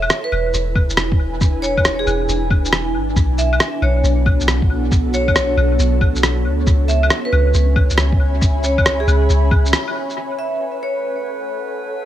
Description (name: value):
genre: future garage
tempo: 137 BPM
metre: 4/4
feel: swing 66% on 16ths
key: F# minor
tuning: A4 = 438 Hz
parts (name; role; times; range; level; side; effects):
- vibraphone with hard mallets; melody; 0.0-11.1 s; G#4 to E5; -23 LUFS; right 2 dB; tape echo
- ethereal airy pad; sustained chords; 0.0-12.1 s; B3 to B5; -23 LUFS; equal; ensemble chorus, built-in reverb, vintage 12-bit sampler grit, sidechain pumping
- soft 808-style bass; bass; 0.0-9.7 s; E1 to D2; -18 LUFS; equal; sidechain pumping
- electronic claves, rim click and shaker; drums; 0.0-10.2 s; none; -20 LUFS; left 1 dB; small room ambience, analog delay
- electronic kick drum; drums; 0.8-9.6 s; none; -16 LUFS; equal; small room ambience
- drifting glass-harmonics texture; texture; 10.4-12.1 s; B4; -29 LUFS; right 2 dB; chorus, built-in reverb
room: little or no reverb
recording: echo-heavy mix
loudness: -14 LUFS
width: side -12 dB against mid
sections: 0.0-10.2 A section; 10.2-12.1 B section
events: break 9.7-10.2; band accent 9.7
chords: 0.0 E7; 3.2 Bm7; 6.7 C#m7; 10.2 F#m